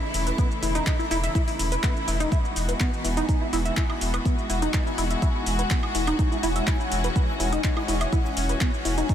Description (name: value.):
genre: progressive house.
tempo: 124 BPM.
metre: 4/4.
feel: straight.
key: E major.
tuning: A4 = 440 Hz.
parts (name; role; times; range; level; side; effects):
rich studio string section; sustained chords; 0.0-9.1 s; C#3 to F#4; -30 LUFS; left 2 dB; sidechain pumping.
backwards swelling texture; texture; 0.0-9.1 s; G#5 to B5; -37 LUFS; equal; built-in reverb, sidechain pumping.
round analog bass; bass; 0.1-9.0 s; E1; -28 LUFS; equal; sidechain pumping.
deep house drum kit; drums; 0.1-9.1 s; handclaps, hi-hat, shaker, woodblock; -32 LUFS; equal; sidechain pumping on hats, sidechain pumping on perc.
tight sequenced synth; arpeggios; 0.3-9.1 s; B3 to E5; -28 LUFS; equal; chorus, sidechain pumping, ping-pong delay.
electronic kick drum; drums; 0.4-9.1 s; none; -24 LUFS; equal; none.
swell; sound effects; 1.7-2.3 s; none; -41 LUFS; right 2 dB; none.
room: moderate huge ambient reverb, RT60 5.2 s.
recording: dreamy mix soaked in reverb.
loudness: -22 LUFS.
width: side -10 dB against mid.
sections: 0.0-9.1 A section.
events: swell 1.7-2.3.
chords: 0.0 A/E; 2.3 Eadd9.